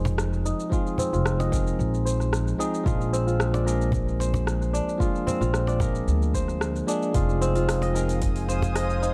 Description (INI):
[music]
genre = organic downtempo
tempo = 112 BPM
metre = 4/4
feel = straight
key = F dorian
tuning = A4 = 440 Hz
[part]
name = bell-like tine electric piano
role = accompaniment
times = 0.0-9.1 s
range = F3 to Ab4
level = -32 LUFS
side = equal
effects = sidechain pumping, tape echo
[part]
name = kora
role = arpeggios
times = 0.0-9.1 s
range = C4 to Eb5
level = -32 LUFS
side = equal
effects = low-pass filter, tape echo
[part]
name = upright bass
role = bass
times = 0.0-9.1 s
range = F1 to D2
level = -28 LUFS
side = equal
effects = tube saturation, sidechain pumping
[part]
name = deep house drum kit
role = drums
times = 0.1-9.1 s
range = hi-hat, rim click, shaker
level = -36 LUFS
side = equal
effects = overdrive, small room reverb
[part]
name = cajon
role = percussion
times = 0.1-8.7 s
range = none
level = -32 LUFS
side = equal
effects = none
[part]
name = electronic kick drum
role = drums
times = 0.7-8.3 s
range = none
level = -29 LUFS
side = equal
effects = small room reverb
[part]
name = ethereal airy pad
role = sustained chords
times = 7.9-9.1 s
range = C5 to Eb6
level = -35 LUFS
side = equal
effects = ensemble chorus, built-in reverb, phaser, sidechain pumping
[sound]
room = light reverb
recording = dark, warm production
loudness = -25 LUFS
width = mono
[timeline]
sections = 0.0-9.1 A section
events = filter sweep on kora 0.0-9.1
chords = 0.0 Fm7; 2.9 Bb7; 7.1 Fm7